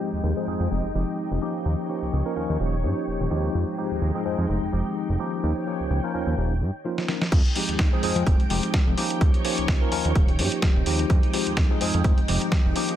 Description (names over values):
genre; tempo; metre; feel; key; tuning
filtered disco house; 127 BPM; 4/4; swing 55% on 16ths; F minor; A4 = 440 Hz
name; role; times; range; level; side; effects
tine electric piano; accompaniment; 0.0-13.0 s; F3 to Bb4; -27 LUFS; left 1 dB; medium stereo tremolo, phaser, sidechain pumping, low-pass filter
string machine, full ensemble; sustained chords; 0.0-13.0 s; Ab3 to G5; -32 LUFS; left 1 dB; ensemble chorus, sidechain pumping, low-pass filter
fat analog bass; bass; 0.1-12.7 s; Eb1 to G2; -26 LUFS; equal; tube saturation, sidechain pumping, low-pass filter
dusty soul sampler-style drum kit; drums; 7.0-13.0 s; crash cymbal, hi-hat, snare drum; -28 LUFS; equal; sidechain pumping on cymbals, low-pass filter on cymbals, low-pass filter on snare, sidechain pumping on hats, low-pass filter on hats, low-pass filter on room
electronic kick drum; drums; 7.3-12.6 s; none; -20 LUFS; equal; overdrive
room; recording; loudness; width
little or no reverb; none; -21 LUFS; side -11 dB against mid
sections
0.0-7.3 A section; 7.3-13.0 B section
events
filter sweep 0.0-7.3; drum fill 7.0-7.3; drop 7.3-13.0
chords
0.0 Fm9; 1.7 Eb7; 3.5 Fm9; 5.4 Eb7; 7.3 Fm9; 9.2 Eb7; 11.1 Fm9